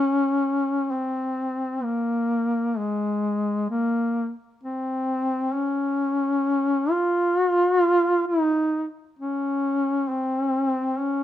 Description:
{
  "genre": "caucasian folk",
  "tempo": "free time",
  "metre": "none",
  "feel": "none",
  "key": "unclear",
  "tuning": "A4 = 440 Hz",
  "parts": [
    { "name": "mellow duduk", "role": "solo", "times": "0.0-11.2 s", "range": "Ab3 to F4", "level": "-21 LUFS", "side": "left 1 dB", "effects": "none" }
  ],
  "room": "light reverb",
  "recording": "minimal, uncompressed stereo recording",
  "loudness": "-22 LUFS",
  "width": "side -12 dB against mid",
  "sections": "0.0-11.2 A section",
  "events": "none",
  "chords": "none",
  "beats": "free time"
}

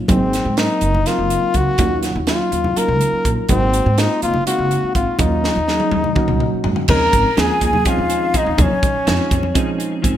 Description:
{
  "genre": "electric jazz fusion",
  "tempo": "247 BPM (eighths)",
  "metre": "7/8",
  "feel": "straight",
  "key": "unclear",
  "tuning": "A4 = 440 Hz",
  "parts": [
    { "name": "barky reed electric piano", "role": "accompaniment", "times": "0.0-10.2 s", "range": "F3 to F5", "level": "-23 LUFS", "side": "right 4 dB", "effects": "none" },
    { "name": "trumpet with bucket mute", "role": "melody", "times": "0.1-9.6 s", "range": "C4 to Bb4", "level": "-19 LUFS", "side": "left 3 dB", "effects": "none" },
    { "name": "upright bass", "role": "bass", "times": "0.1-10.2 s", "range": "Gb1 to Eb3", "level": "-21 LUFS", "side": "equal", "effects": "none" },
    { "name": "crisp fusion drum kit", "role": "drums", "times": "0.1-10.2 s", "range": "crash cymbal, hi-hat, kick drum, snare drum, toms", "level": "-21 LUFS", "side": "right 1 dB", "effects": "gated reverb" },
    { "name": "congas", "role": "percussion", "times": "0.1-9.5 s", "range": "none", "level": "-23 LUFS", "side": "left 1 dB", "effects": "none" },
    { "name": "breathy mellow jazz flute", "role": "second line", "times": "6.9-9.6 s", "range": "Db5 to Bb5", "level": "-23 LUFS", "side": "right 3 dB", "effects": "none" },
    { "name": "clean electric guitar", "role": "stabs", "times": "6.9-10.2 s", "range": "F3 to Ab4", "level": "-26 LUFS", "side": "left 4 dB", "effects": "analog chorus, ping-pong delay" }
  ],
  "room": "moderate plate reverb, RT60 1.6 s, studio reverb",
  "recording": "bright 1980s-style digital production",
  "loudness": "-14 LUFS",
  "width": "side -11 dB against mid",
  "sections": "0.0-6.9 A section; 6.9-10.2 B section",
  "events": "drum fill 5.4-6.9",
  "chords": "0.1 Ab9; 1.8 Ebm9; 3.5 Ab9; 5.2 Ebm9; 6.9 Dbmaj9",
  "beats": "| 0.09 0.33 0.58 0.82 1.06 1.31 1.55 | 1.79 2.04 2.28 2.52 2.77 3.01 3.25 | 3.50 3.74 3.98 4.23 4.47 4.71 4.95 | 5.20 5.44 5.68 5.92 6.17 6.41 6.65 | 6.89 7.14 7.38 7.62 7.86 8.11 8.35 | 8.59 8.83 9.07 9.31 9.56 9.80 10.04"
}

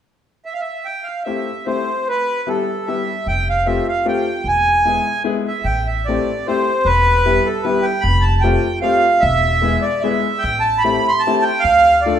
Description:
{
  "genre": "musette",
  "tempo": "150 BPM",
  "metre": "3/4",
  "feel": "straight",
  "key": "A minor",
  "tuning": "A4 = 440 Hz",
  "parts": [
    { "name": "accordion", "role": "melody", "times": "0.5-12.2 s", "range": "A4 to C6", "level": "-16 LUFS", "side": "right 2 dB", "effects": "none" },
    { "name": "clear upright piano", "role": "accompaniment", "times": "1.3-12.2 s", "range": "G3 to A4", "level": "-21 LUFS", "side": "left 4 dB", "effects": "none" },
    { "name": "upright bass", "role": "bass", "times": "3.3-12.2 s", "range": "E1 to D2", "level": "-21 LUFS", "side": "equal", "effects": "none" }
  ],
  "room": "wet recital hall reverb, RT60 1.4 s",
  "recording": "minimal, uncompressed stereo recording",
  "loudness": "-15 LUFS",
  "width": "side -9 dB against mid",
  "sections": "0.9-5.7 A section; 5.7-12.2 B section",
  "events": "none",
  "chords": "0.0 N.C.; 0.9 Am7; 2.1 Em; 3.3 Fadd9; 4.4 E; 5.7 Am7; 6.9 Em; 8.1 Fadd9; 9.2 E; 10.4 Am7; 11.7 Dm",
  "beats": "0.07 0.46 | 0.86 1.27 1.67 | 2.07 2.47 2.87 | 3.26 3.65 4.05 | 4.45 4.85 5.25 | 5.66 6.06 6.46 | 6.86 7.26 7.66 | 8.05 8.44 8.84 | 9.23 9.63 10.04 | 10.44 10.85 11.25 | 11.65 12.05"
}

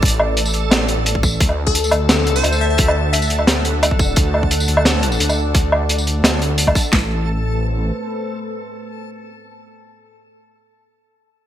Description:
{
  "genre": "half-time drum and bass",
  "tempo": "174 BPM",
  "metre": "4/4",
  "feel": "half-time",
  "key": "A dorian",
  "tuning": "A4 = 440 Hz",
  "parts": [
    { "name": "dark analog pad", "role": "sustained chords", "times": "0.0-10.4 s", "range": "A3 to F#5", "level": "-28 LUFS", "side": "right 1 dB", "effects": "chorus, sidechain pumping" },
    { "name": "dark detuned saw bass", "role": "bass", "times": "0.0-7.9 s", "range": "A1 to D2", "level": "-19 LUFS", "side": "equal", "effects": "none" },
    { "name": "crunchy breakbeat drum kit", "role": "drums", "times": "0.0-6.8 s", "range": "hi-hat, snare drum, tambourine, woodblock", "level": "-17 LUFS", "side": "equal", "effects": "gated reverb" },
    { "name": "drum and bass drum kit", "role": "drums", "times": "0.0-7.0 s", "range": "kick drum, snare drum", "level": "-17 LUFS", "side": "equal", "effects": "overdrive" },
    { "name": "backwards swelling texture", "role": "texture", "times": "0.0-6.9 s", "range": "A4", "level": "-26 LUFS", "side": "left 2 dB", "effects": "built-in reverb" },
    { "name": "glassy wavetable pluck", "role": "melody", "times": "1.7-3.3 s", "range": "A4 to E5", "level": "-23 LUFS", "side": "left 2 dB", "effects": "chorus, vintage 12-bit sampler grit, digital delay" }
  ],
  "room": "light reverb, small room ambience",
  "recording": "bright 1980s-style digital production",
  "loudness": "-14 LUFS",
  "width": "side -11 dB against mid",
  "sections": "0.0-6.9 A section; 6.9-9.7 B section",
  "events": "drop 0.0-6.9",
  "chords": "0.0 Asus2; 1.4 Dadd9; 6.9 Amadd9",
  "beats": "| 0.03 0.37 0.72 1.06 | 1.41 1.75 2.10 2.44 | 2.79 3.13 3.48 3.82 | 4.17 4.51 4.86 5.20 | 5.54 5.89 6.23 6.58 | 6.92 7.27 7.61 7.96 | 8.30 8.65 8.99 9.34"
}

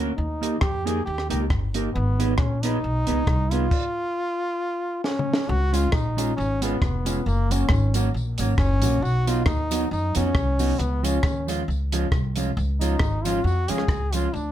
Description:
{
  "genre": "ska",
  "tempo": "136 BPM",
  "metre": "4/4",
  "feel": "swing 56% on 8ths",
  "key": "unclear",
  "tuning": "A4 = 438 Hz",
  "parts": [
    { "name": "mellow electric guitar", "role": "accompaniment", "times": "0.0-14.3 s", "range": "E#3 to B4", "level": "-28 LUFS", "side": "right 3 dB", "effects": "none" },
    { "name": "upright bass", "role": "bass", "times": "0.0-14.5 s", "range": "E#1 to F#2", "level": "-24 LUFS", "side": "equal", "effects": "none" },
    { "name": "brilliant trombone", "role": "melody", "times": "0.2-14.5 s", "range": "A#3 to G#4", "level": "-27 LUFS", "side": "left 1 dB", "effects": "none" },
    { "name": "compact cocktail drum kit", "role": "drums", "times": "0.4-14.2 s", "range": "crash cymbal, hi-hat, kick drum, rim click, snare drum, toms", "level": "-25 LUFS", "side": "equal", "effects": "none" },
    { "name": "tambourine", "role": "percussion", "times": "5.7-14.2 s", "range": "none", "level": "-39 LUFS", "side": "left 6 dB", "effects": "tape echo" }
  ],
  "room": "moderate club reverb, RT60 0.7 s",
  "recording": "none",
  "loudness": "-21 LUFS",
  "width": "side -12 dB against mid",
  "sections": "0.0-5.5 A section; 5.5-14.5 B section",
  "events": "stop 3.7-5.5; drum fill 5.0-5.5",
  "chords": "0.2 D#; 1.9 G#m; 3.7 N.C.; 5.5 C#; 7.3 F#; 9.0 B; 10.8 C#",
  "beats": "| 0.17 0.62 1.06 1.50 | 1.95 2.39 2.83 3.27 | 3.71 4.16 4.60 5.04 | 5.49 5.93 6.37 6.81 | 7.25 7.70 8.14 8.58 | 9.02 9.46 9.91 10.35 | 10.79 11.23 11.67 12.12 | 12.56 13.00 13.44 13.88 | 14.32"
}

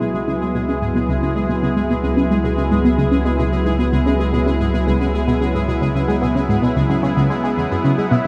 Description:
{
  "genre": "ambient, sequencer-driven space music",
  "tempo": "111 BPM",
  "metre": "4/4",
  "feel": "straight",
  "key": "C# minor",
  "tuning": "A4 = 440 Hz",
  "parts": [
    { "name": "sweeping resonant pad", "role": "sustained chords", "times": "0.0-8.3 s", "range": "F#3 to G#4", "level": "-23 LUFS", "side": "equal", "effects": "chorus" },
    { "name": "tight sequenced synth", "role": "riff", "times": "0.0-8.3 s", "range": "C#2 to G#3", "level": "-22 LUFS", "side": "equal", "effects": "chorus, phaser, delay" },
    { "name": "analog drone", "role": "bass", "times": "0.3-8.3 s", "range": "C#2", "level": "-26 LUFS", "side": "equal", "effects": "chorus" },
    { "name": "pulsing gated texture", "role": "texture", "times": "0.0-8.3 s", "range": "G#3 to G#4", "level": "-30 LUFS", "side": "equal", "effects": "chorus, built-in reverb" },
    { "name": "breathy flute-like synth lead", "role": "melody", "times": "8.0-8.3 s", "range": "E5 to F#5", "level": "-25 LUFS", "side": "equal", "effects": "ensemble chorus" }
  ],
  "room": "wet plate reverb, RT60 2.3 s",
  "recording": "none",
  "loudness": "-18 LUFS",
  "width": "mono",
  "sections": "0.0-8.3 A section",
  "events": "none",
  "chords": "0.0 C#m",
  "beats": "0.28 0.82 | 1.36 1.90 2.44 2.98 | 3.52 4.06 4.60 5.14 | 5.68 6.22 6.76 7.30 | 7.85"
}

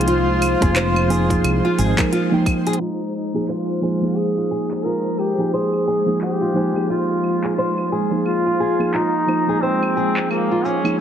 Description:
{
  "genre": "organic downtempo",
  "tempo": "88 BPM",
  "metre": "4/4",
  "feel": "swing 60% on 16ths",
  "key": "F minor",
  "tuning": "A4 = 440 Hz",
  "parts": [
    { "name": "warm duduk", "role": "melody", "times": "0.0-11.0 s", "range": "Bb3 to Bb4", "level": "-22 LUFS", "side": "equal", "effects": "tape echo" },
    { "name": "muted felt-like synth keys", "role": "accompaniment", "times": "0.0-11.0 s", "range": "F3 to G5", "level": "-22 LUFS", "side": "right 2 dB", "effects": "chorus, sidechain pumping, tape echo" },
    { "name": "ethereal airy pad", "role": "sustained chords", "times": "0.0-11.0 s", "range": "Ab3 to C5", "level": "-25 LUFS", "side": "left 1 dB", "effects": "ensemble chorus, built-in reverb, sidechain pumping" },
    { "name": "nylon-string guitar", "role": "arpeggios", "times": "0.0-11.0 s", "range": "Ab3 to C5", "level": "-25 LUFS", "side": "equal", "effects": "low-pass filter, tape echo" },
    { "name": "woody fretless electric bass", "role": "bass", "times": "0.0-1.9 s", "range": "F1 to C2", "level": "-21 LUFS", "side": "equal", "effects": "analog chorus, sidechain pumping" },
    { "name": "organic electronic drum kit", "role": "drums", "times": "0.0-11.0 s", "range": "cabasa, claves, crash cymbal, handclaps, hi-hat", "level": "-26 LUFS", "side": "right 1 dB", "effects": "overdrive" },
    { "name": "electronic kick drum", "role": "drums", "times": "0.6-2.6 s", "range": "none", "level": "-20 LUFS", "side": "equal", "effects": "overdrive" }
  ],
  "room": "moderate lush hall reverb, RT60 1.8 s",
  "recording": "heavily compressed radio sound, multiband compression, low-pass filter",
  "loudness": "-17 LUFS",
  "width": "side -9 dB against mid",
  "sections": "0.0-2.8 A section; 2.8-11.0 B section",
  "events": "filter sweep on nylon-string guitar 2.8-11.0; filter sweep on ambient pad 2.8-11.0; filter sweep 2.8-11.0",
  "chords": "0.0 Fm",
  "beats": "| 0.08 0.76 1.44 2.12 | 2.80 3.49 4.17 4.85 | 5.53 6.21 6.89 7.58 | 8.26 8.94 9.62 10.30 | 10.99"
}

